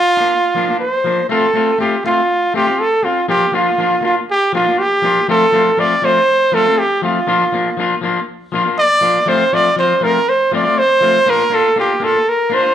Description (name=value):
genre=highlife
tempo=120 BPM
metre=4/4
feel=swing 54% on 16ths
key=F major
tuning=A4 = 444 Hz
part: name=clear trumpet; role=melody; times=0.0-12.7 s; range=F4 to D5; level=-13 LUFS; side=right 1 dB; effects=none
part: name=electric guitar at the edge of break-up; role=accompaniment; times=0.2-12.7 s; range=F3 to F4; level=-18 LUFS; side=left 4 dB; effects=none
room=moderate large studio reverb, RT60 0.8 s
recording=band playing live in one room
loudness=-12 LUFS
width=side -10 dB against mid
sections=0.0-1.3 A section; 1.3-12.7 B section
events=none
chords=0.0 Bb; 1.3 F; 3.3 Bb; 5.3 F; 7.3 Bb; 9.3 F; 11.3 Bb